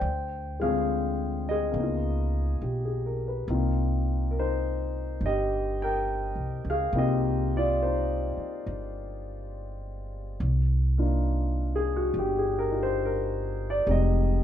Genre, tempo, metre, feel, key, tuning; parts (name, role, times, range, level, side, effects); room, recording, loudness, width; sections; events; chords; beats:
jazz ballad; 69 BPM; 4/4; swing 66% on 8ths; C minor; A4 = 437 Hz
dark concert grand piano; accompaniment; 0.0-14.4 s; D3 to G5; -28 LUFS; left 2 dB
upright bass; bass; 0.0-14.4 s; F1 to D2; -28 LUFS; equal
moderate club reverb, RT60 0.6 s; dark, warm production; -25 LUFS; side -10 dB against mid
0.0-10.4 A section; 10.4-14.4 B section
0.0 Dm7b5; 1.8 Db13; 3.5 Cm7; 10.4 Cm11; 13.9 Fm7
| 0.03 0.90 1.76 2.63 | 3.49 4.36 5.22 6.08 | 6.95 7.81 8.68 9.54 | 10.41 11.27 12.14 13.00 | 13.87